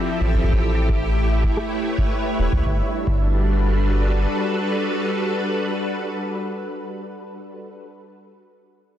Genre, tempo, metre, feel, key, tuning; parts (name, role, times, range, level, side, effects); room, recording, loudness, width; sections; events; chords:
IDM; 110 BPM; 4/4; straight; G major; A4 = 440 Hz
soft string machine; sustained chords; 0.0-7.7 s; F3 to D5; -24 LUFS; equal; ensemble chorus
bubbling stepped-filter texture; texture; 0.0-2.7 s; E4 to E5; -31 LUFS; right 2 dB; chorus, built-in reverb
booming analog drum machine; drums; 0.1-2.6 s; claves, hi-hat, rim click; -33 LUFS; equal
round analog bass; bass; 0.2-4.3 s; E1 to C#2; -20 LUFS; equal
electronic kick drum; drums; 0.3-3.2 s; -23 LUFS; equal
light reverb; dense, heavily limited modern master; -19 LUFS; side -11 dB against mid
0.0-2.7 A section; 2.7-7.0 B section
0.5 A7; 2.7 Gmaj7